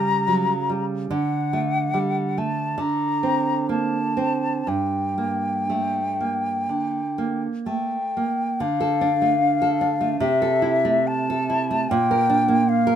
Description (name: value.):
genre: romantic duo for flute and classical guitar.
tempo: 58-79 BPM.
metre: 4/4.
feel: rubato.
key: G minor, D minor from 8.6 s.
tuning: A4 = 440 Hz.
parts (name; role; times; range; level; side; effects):
mellow hollow silver concert flute; melody; 0.0-13.0 s; E5 to Bb5; -23 LUFS; left 3 dB; none.
nylon-string guitar; accompaniment; 0.0-13.0 s; G2 to Bb4; -23 LUFS; right 4 dB; none.
room: light reverb.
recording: minimal, uncompressed stereo recording.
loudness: -20 LUFS.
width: side -9 dB against mid.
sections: 0.0-8.6 A section; 8.6-13.0 B section.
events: none.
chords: 0.0 Gdim/Db; 1.1 D; 2.8 D5; 4.7 Gm; 8.6 Dm; 10.2 Am/C; 11.9 Gm/Bb.